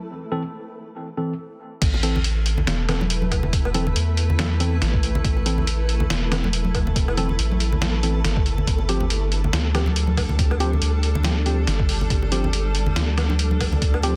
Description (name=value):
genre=deep dubstep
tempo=140 BPM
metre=4/4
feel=swing 57% on 16ths, half-time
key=A minor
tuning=A4 = 440 Hz
part: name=granular cloud pad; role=sustained chords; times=0.0-14.2 s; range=G3 to B4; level=-35 LUFS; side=equal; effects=built-in reverb
part: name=flickering grainy texture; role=texture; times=0.0-14.2 s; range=A4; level=-38 LUFS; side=equal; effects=built-in reverb
part: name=tine electric piano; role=stabs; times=0.3-14.1 s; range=E3 to A4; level=-32 LUFS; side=equal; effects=overdrive, vintage 12-bit sampler grit, dub echo
part: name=soft dub sub bass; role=bass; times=1.8-14.2 s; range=E1 to E2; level=-24 LUFS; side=equal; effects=none
part: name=electronic kick drum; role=drums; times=1.8-13.9 s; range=none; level=-24 LUFS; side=equal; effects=overdrive
part: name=trip hop sampler-style drum kit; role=drums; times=1.8-14.1 s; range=crash cymbal, hi-hat, snare drum, woodblock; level=-29 LUFS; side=equal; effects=none
part: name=bongos and congas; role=percussion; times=1.9-14.1 s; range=none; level=-31 LUFS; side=equal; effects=none
room=little or no reverb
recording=dense, heavily limited modern master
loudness=-22 LUFS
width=mono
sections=0.0-1.8 A section; 1.8-14.2 B section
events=drop 1.8-14.2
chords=0.0 Am; 8.7 G7sus4